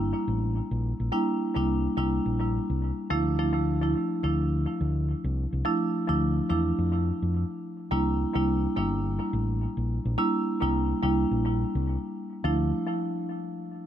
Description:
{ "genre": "afrobeats", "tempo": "106 BPM", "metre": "4/4", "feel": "swing 55% on 16ths", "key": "unclear", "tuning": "A4 = 440 Hz", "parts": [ { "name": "fingered electric bass", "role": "bass", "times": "0.0-12.7 s", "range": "G1 to F2", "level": "-27 LUFS", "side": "equal", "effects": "none" }, { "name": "marimba with medium mallets", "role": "accompaniment", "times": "1.1-12.7 s", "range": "F3 to E4", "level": "-27 LUFS", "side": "equal", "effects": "analog delay" } ], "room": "moderate plate reverb, RT60 3.3 s", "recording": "echo-heavy mix", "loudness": "-25 LUFS", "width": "side -10 dB against mid", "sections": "0.0-7.9 A section; 7.9-12.4 B section; 12.4-13.9 C section", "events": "none", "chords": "0.0 C7; 3.1 Dmadd9; 7.9 C7; 12.4 Dmadd9" }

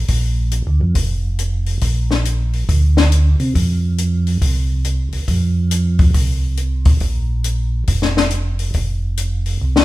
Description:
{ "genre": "soul jazz organ trio", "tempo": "139 BPM", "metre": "4/4", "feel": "swing 65% on 8ths", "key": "Bb major", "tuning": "A4 = 441 Hz", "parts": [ { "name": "mellow tonewheel organ", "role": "bass", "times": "0.0-9.8 s", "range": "F1 to C3", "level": "-16 LUFS", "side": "right 1 dB", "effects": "slow rotary speaker" }, { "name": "compact cocktail drum kit", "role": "drums", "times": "0.1-9.8 s", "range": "hi-hat, kick drum, snare drum", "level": "-18 LUFS", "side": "left 2 dB", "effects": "none" } ], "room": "wet large studio reverb, RT60 1.1 s", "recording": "band playing live in one room", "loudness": "-15 LUFS", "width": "side -16 dB against mid", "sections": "0.0-9.8 A section", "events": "drum fill 9.6", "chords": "none" }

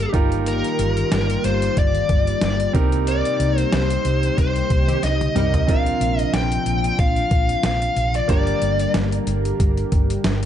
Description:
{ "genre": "1980s-style pop", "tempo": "92 BPM", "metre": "4/4", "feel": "swing 55% on 16ths", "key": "Bb major", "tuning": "A4 = 440 Hz", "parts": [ { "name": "bluesy overdriven lead guitar", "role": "melody", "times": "0.0-8.9 s", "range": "Bb4 to G5", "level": "-23 LUFS", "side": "left 2 dB", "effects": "distortion, tape echo" }, { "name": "clear concert grand piano", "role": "accompaniment", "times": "0.0-10.5 s", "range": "Bb3 to Bb4", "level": "-28 LUFS", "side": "right 6 dB", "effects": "none" }, { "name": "chorused pulse-width pad", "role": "sustained chords", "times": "0.0-10.5 s", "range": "C3 to Bb4", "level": "-26 LUFS", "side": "left 3 dB", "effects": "none" }, { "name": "hollow-body short-scale fingered electric bass", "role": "bass", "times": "0.0-10.5 s", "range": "G1 to C2", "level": "-23 LUFS", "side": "equal", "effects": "none" }, { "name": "boom bap sampler-style drum kit", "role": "drums", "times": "0.1-10.5 s", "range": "hi-hat, kick drum, snare drum, toms", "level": "-21 LUFS", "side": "equal", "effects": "none" }, { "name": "funky polysynth comp", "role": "stabs", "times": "4.9-5.6 s", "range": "Eb3 to Bb4", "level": "-28 LUFS", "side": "left 2 dB", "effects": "chorus" } ], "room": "digital ambience", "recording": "dark, warm production, nothing above 10.5 kHz", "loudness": "-17 LUFS", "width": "side -10 dB against mid", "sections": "0.0-10.5 A section", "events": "band accent 3.1-5.7; drum fill 5.0-5.7", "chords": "0.1 Ebadd9/G; 2.7 Cm7; 5.7 Bbadd9; 8.3 Gm" }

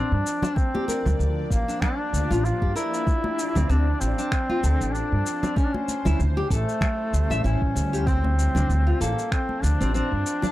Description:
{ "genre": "organic downtempo", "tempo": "96 BPM", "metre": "4/4", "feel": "swing 56% on 16ths", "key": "D minor", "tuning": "A4 = 440 Hz", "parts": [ { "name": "warm duduk", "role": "melody", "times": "0.0-10.5 s", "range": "A3 to F4", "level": "-28 LUFS", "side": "equal", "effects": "analog delay" }, { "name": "bowed-like drone", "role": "sustained chords", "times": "0.1-10.5 s", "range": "F3 to D5", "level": "-34 LUFS", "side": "equal", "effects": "built-in reverb, phaser, sidechain pumping" }, { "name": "nylon-string guitar", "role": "arpeggios", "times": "0.0-10.5 s", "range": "C4 to E5", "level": "-31 LUFS", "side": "left 2 dB", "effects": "analog delay" }, { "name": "upright bass", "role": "bass", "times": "0.1-10.2 s", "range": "A1 to G2", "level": "-22 LUFS", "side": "equal", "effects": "none" }, { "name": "electronic shaker and finger snaps", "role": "drums", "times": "0.3-10.5 s", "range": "none", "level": "-34 LUFS", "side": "left 1 dB", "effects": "overdrive" }, { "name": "congas and bongos", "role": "percussion", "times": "0.4-10.5 s", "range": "none", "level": "-30 LUFS", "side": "equal", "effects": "none" }, { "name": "electronic kick drum", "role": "drums", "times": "0.6-9.5 s", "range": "none", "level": "-24 LUFS", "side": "equal", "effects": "none" } ], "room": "studio reverb", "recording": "dry, gritty hardware recording", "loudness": "-21 LUFS", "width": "side -15 dB against mid", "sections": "0.0-10.5 A section", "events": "none", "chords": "0.0 Dm7; 0.6 Gm7; 3.1 Dm7; 5.6 A7; 8.1 Dm7" }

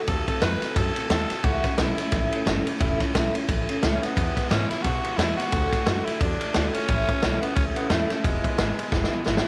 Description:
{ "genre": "rockabilly", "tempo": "176 BPM", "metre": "4/4", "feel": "swing 59% on 8ths", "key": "A major", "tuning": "A4 = 442 Hz", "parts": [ { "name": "picked steel-string acoustic guitar", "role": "accompaniment", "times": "0.0-9.5 s", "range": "E2 to F#4", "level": "-32 LUFS", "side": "equal", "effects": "none" }, { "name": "raspy tenor saxophone", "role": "melody", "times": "0.1-9.3 s", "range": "G#3 to B4", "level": "-32 LUFS", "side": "equal", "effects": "none" }, { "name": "upright bass", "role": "bass", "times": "0.1-9.5 s", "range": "E1 to B2", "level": "-31 LUFS", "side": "equal", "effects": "none" }, { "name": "vintage drum kit", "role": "drums", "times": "0.1-9.5 s", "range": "kick drum, ride cymbal, snare drum", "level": "-27 LUFS", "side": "equal", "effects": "none" } ], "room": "studio reverb", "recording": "none", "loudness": "-24 LUFS", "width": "mono", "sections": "0.0-9.5 A section", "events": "drum fill 8.9-9.5", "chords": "0.1 D#dim7; 1.4 A; 4.2 E; 5.5 D; 6.9 A; 8.2 E" }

